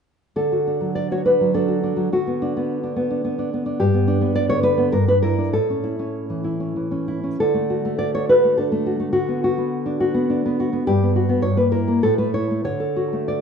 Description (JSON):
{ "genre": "romantic piece for solo classical guitar", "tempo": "94-109 BPM", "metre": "3/4", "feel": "rubato", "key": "D major", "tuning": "A4 = 440 Hz", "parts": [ { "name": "nylon-string guitar", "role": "solo", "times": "0.4-13.4 s", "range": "G2 to D5", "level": "-18 LUFS", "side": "equal", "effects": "none" } ], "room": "moderate large studio reverb, RT60 1.1 s", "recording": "band playing live in one room, nothing above 10.8 kHz", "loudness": "-18 LUFS", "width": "side -6 dB against mid", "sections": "0.4-13.4 A section", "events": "none", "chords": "0.4 D; 2.1 Bm/D; 3.8 G; 4.9 Em7b5/G; 5.5 A; 7.4 D; 9.2 Bm/D; 10.8 Gmaj7; 11.4 Edim/G; 12.0 A; 12.6 D", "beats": "| 0.36 0.95 1.53 | 2.12 2.69 3.24 | 3.81 4.36 4.94 | 5.54 6.14 6.76 | 7.38 8.00 8.59 | 9.15 9.71 10.28 | 10.85 11.42 12.00 | 12.62 13.25" }